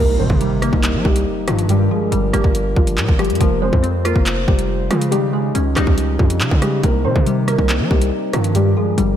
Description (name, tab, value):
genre	hip hop, drill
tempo	140 BPM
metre	4/4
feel	half-time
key	C minor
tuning	A4 = 440 Hz
part	dark concert grand piano	melody	0.0-8.9 s	F3 to C5	-21 LUFS	left 2 dB	analog chorus, tape echo
part	glassy wavetable pluck	accompaniment	0.0-9.2 s	G2 to F4	-23 LUFS	right 2 dB	chorus
part	mellow French horn section	sustained chords	0.0-9.2 s	C3 to C5	-26 LUFS	left 2 dB	none
part	distorted 808-style bass	bass	0.0-9.2 s	F1 to G3	-19 LUFS	equal	distortion
part	impact	sound effects	0.0-1.7 s	none	-25 LUFS	equal	none
part	drill drum kit	drums	0.3-9.1 s	handclaps, hi-hat, kick drum, rim click	-18 LUFS	equal	none
room	moderate lush hall reverb, RT60 2.2 s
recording	dreamy mix soaked in reverb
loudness	-14 LUFS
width	side -10 dB against mid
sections	0.0-9.2 A section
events	impact 0.0-1.7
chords	0.0 Cm7; 1.7 Gm7; 3.4 Fm; 5.1 Dbsus2; 6.8 Cm7; 8.5 Gm7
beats	0.41 0.83 1.26 | 1.69 2.12 2.55 2.98 | 3.41 3.83 4.26 4.69 | 5.12 5.55 5.98 6.41 | 6.83 7.26 7.69 8.12 | 8.55 8.98